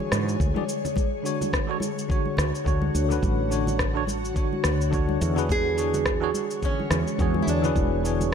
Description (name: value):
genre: sunset chillout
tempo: 106 BPM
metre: 4/4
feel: swing 57% on 16ths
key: D lydian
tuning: A4 = 440 Hz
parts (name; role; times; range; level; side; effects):
- bell-like tine electric piano; accompaniment; 0.0-8.3 s; D3 to D5; -28 LUFS; moving between left 5 dB and right 6 dB; medium stereo tremolo, auto-pan, tape echo
- ethereal airy pad; sustained chords; 0.0-8.3 s; D3 to C#5; -30 LUFS; left 2 dB; ensemble chorus, built-in reverb, phaser
- congas; percussion; 0.0-8.3 s; none; -34 LUFS; right 2 dB; none
- woody fretless electric bass; bass; 0.1-8.3 s; E1 to G#2; -26 LUFS; equal; none
- electronic rim click and cabasa; drums; 0.1-8.3 s; none; -31 LUFS; left 1 dB; none
- electronic kick drum; drums; 0.4-7.9 s; none; -26 LUFS; equal; none
- nylon-string guitar; melody; 5.5-8.3 s; C#4 to G#4; -28 LUFS; right 4 dB; tape echo
room: light reverb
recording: none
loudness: -22 LUFS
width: side -7 dB against mid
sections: 0.0-8.3 A section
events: none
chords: 0.0 E13; 1.0 Dmaj7; 5.5 E13